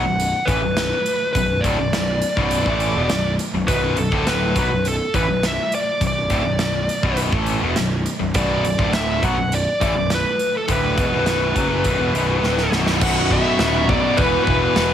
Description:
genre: hard rock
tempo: 103 BPM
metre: 4/4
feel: straight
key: B minor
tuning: A4 = 440 Hz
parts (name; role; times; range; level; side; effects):
- high-gain lead guitar; melody; 0.0-14.9 s; A4 to F#5; -22 LUFS; equal; distortion, slapback echo, plate reverb
- overdriven electric guitar; riff; 0.0-14.9 s; B1 to A3; -24 LUFS; left 9 dB; none
- overdriven electric guitar; riff; 0.0-14.9 s; B1 to A3; -26 LUFS; right 9 dB; none
- fuzz picked electric bass; bass; 0.0-14.9 s; B0 to B1; -24 LUFS; equal; overdrive
- big rock drum kit; drums; 0.2-14.9 s; crash cymbal, hi-hat, kick drum, snare drum; -23 LUFS; right 1 dB; none
- overdriven tonewheel organ; sustained chords; 13.0-14.9 s; E3 to C#5; -31 LUFS; equal; none
- distorted electric guitar; riff; 13.0-14.9 s; B1 to E3; -25 LUFS; equal; none
room: light reverb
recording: heavily compressed radio sound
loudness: -17 LUFS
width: side -10 dB against mid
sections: 0.0-13.0 A section; 13.0-14.9 B section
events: drum fill 12.4-13.0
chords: 0.0 Bm; 13.0 B5; 14.2 E5

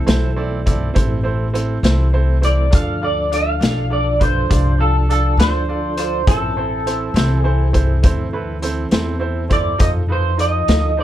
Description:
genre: slow blues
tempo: 68 BPM (dotted quarters)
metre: 12/8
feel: straight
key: A minor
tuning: A4 = 440 Hz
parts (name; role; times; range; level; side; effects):
- electric guitar through a small old amp; melody; 0.0-11.0 s; A4 to F5; -21 LUFS; right 1 dB; lush chorus
- mellow tonewheel organ; sustained chords; 0.0-11.0 s; E3 to Bb4; -28 LUFS; left 1 dB; slow rotary speaker, chorus vibrato
- upright bass; bass; 0.0-11.0 s; A1 to F2; -18 LUFS; equal; none
- bright upright piano; accompaniment; 0.1-11.0 s; C4 to F5; -25 LUFS; right 4 dB; none
- vintage drum kit; drums; 0.1-10.8 s; hi-hat, kick drum, snare drum; -18 LUFS; left 1 dB; none
room: little or no reverb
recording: dark, warm production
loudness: -15 LUFS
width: side -12 dB against mid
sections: 0.0-11.0 A section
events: none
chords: 0.0 Am; 2.7 Dm; 6.3 Am; 9.8 F7

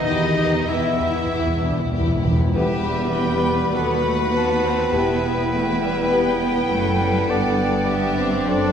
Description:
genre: quick classical-period movement for symphony orchestra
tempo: 100 BPM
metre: 4/4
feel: uneven beats, rubato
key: E minor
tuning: A4 = 439 Hz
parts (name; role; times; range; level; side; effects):
- rich chamber violin section; melody; 0.0-8.7 s; D5 to G5; -31 LUFS; left 5 dB; none
- bright oboe; second line; 0.0-8.7 s; B4 to E5; -28 LUFS; equal; none
- clear symphonic violin section; second line; 0.0-8.7 s; B3 to B4; -28 LUFS; left 6 dB; none
- small flute group; second line; 0.0-8.7 s; D#5 to B5; -28 LUFS; equal; none
- warm clarinet; second line; 0.0-8.7 s; D4 to G4; -28 LUFS; left 2 dB; none
- rich chamber viola section; accompaniment; 0.0-8.7 s; G3 to E4; -28 LUFS; equal; none
- mellow French horn section; sustained chords; 0.0-8.7 s; B3 to A4; -28 LUFS; left 3 dB; none
- warm chamber cello section; bass; 0.0-8.7 s; D#2 to E3; -27 LUFS; right 1 dB; none
- rich chamber double bass section; bass; 0.1-8.7 s; E1 to E2; -27 LUFS; right 3 dB; none
- timpani; percussion; 0.1-5.8 s; E2; -26 LUFS; equal; none
- mellow bassoon; accompaniment; 2.5-8.7 s; B3 to C4; -27 LUFS; right 3 dB; none
room: wet concert hall reverb, RT60 2.5 s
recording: none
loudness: -18 LUFS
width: side -8 dB against mid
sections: 0.0-2.5 A section; 2.5-8.7 B section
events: timpani fill 0.1-2.5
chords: 0.1 Em; 3.7 B7/D#; 4.9 Em; 7.3 G

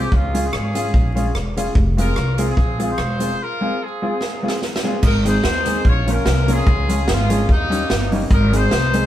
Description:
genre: ska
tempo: 146 BPM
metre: 4/4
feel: swing 55% on 8ths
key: F minor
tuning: A4 = 439 Hz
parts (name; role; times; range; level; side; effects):
- clear horn section; melody; 0.0-9.1 s; G3 to Db5; -24 LUFS; left 1 dB; none
- mellow electric guitar; accompaniment; 0.0-9.0 s; Eb3 to F4; -24 LUFS; equal; none
- warm upright piano; stabs; 0.0-9.1 s; C4 to Bb4; -27 LUFS; left 2 dB; none
- upright bass; bass; 0.0-9.1 s; E1 to Eb2; -20 LUFS; equal; none
- swinging big-band drum kit; drums; 0.1-9.0 s; crash cymbal, hi-hat, kick drum, rim click, snare drum; -20 LUFS; equal; none
room: moderate studio reverb, RT60 0.8 s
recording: band playing live in one room, vinyl crackle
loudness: -16 LUFS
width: side -12 dB against mid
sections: 0.0-5.0 A section; 5.0-9.1 B section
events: break 3.4-5.0; drum fill 4.2-5.0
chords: 0.1 Db; 1.8 Fm; 5.0 Ab; 5.8 Bbm; 6.7 Db; 7.5 Eb7; 8.3 Ab

